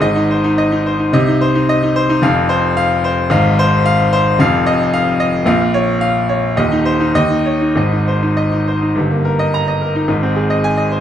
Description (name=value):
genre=classical, virtuoso piano study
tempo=96-114 BPM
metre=2/4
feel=rubato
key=Ab major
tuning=A4 = 440 Hz
part: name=bright baby grand piano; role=solo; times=0.0-11.0 s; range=Eb1 to Bb5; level=-12 LUFS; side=equal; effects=none
room=moderate recital hall reverb, RT60 1.8 s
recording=dark, warm production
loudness=-12 LUFS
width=side -10 dB against mid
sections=0.0-9.0 A section; 9.0-11.0 B section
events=none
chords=0.0 Ab; 1.1 Cm; 2.2 F5; 3.3 Fm/Ab; 4.4 Ebsus2/F; 5.5 Bbm; 6.6 Cm/Eb; 7.1 Dbsus2/Eb; 7.8 Ab; 9.0 Eb/G; 10.1 Ab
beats=| 0.01 0.58 | 1.13 1.68 | 2.23 2.77 | 3.32 3.86 | 4.41 4.94 | 5.47 6.02 | 6.58 7.15 | 7.76 8.36 | 8.96 9.53 | 10.09 10.64